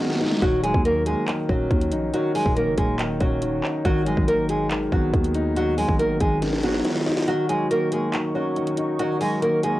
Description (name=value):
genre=hip hop, trap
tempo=140 BPM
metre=4/4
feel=half-time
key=Eb minor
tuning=A4 = 439 Hz
part: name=nylon-string guitar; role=melody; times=0.0-9.8 s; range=Gb3 to Bb4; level=-24 LUFS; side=right 1 dB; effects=cassette tape
part: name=dark grand piano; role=accompaniment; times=0.0-9.8 s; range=Eb3 to Eb4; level=-25 LUFS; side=left 1 dB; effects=cassette tape
part: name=trap drum kit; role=drums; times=0.0-9.7 s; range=handclaps, hi-hat, kick drum, snare drum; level=-25 LUFS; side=equal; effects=none
part: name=growling 808-style bass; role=bass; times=0.4-6.8 s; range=Eb1 to Eb2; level=-27 LUFS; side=equal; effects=tube saturation
part: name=hollow soft pad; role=sustained chords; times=7.3-9.8 s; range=Gb4 to Db6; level=-32 LUFS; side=right 1 dB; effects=chorus, cassette tape
room=moderate studio reverb, RT60 0.6 s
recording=home recording on cassette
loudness=-20 LUFS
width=side -16 dB against mid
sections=0.0-9.8 A section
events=break 0.0-0.4; drum fill 0.0-0.4, 6.4-7.3; kick muted 7.3-9.8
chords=0.4 Ebm7; 3.9 Abm7; 7.3 Ebm7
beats=| 0.42 0.85 1.28 1.71 | 2.13 2.56 2.99 3.42 | 3.85 4.28 4.71 5.13 | 5.56 5.99 6.42 6.85 | 7.28 7.71 8.13 8.56 | 8.99 9.42